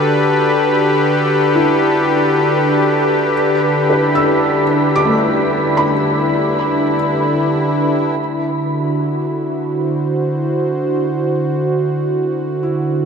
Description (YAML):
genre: ambient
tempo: 74 BPM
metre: 3/4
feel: straight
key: D mixolydian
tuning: A4 = 440 Hz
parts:
  - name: warm analog pad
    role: sustained chords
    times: 0.0-13.1 s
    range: D3 to C5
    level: -14 LUFS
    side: equal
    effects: chorus
  - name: felt-muted upright piano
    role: arpeggios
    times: 0.0-13.1 s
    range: A3 to E6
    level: -21 LUFS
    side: equal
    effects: tape echo
  - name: wind-like tuned noise texture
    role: texture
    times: 0.0-8.2 s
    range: B4 to B5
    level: -24 LUFS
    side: right 2 dB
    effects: built-in reverb
room: wet cathedral reverb, RT60 7.5 s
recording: none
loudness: -13 LUFS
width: side -6 dB against mid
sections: 0.0-8.2 A section; 8.2-13.1 B section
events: none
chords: 0.0 Em11/D; 3.3 G69/D; 8.2 D9